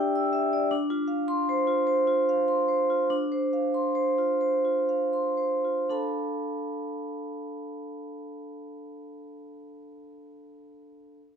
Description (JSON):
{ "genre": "classical, contemporary piece for solo vibraphone", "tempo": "76-106 BPM", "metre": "4/4", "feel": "rubato", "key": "D dorian", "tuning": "A4 = 440 Hz", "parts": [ { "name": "vibraphone with medium hard mallets", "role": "solo", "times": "0.0-11.2 s", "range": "D4 to E6", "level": "-26 LUFS", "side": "equal", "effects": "none" } ], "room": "light reverb", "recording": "dark, warm production", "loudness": "-24 LUFS", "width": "side -7 dB against mid", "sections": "0.0-5.9 A section; 5.9-9.0 B section", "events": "slowing down 0.0-5.9", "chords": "0.0 Em7/D; 0.7 Dm7; 5.9 Dm6" }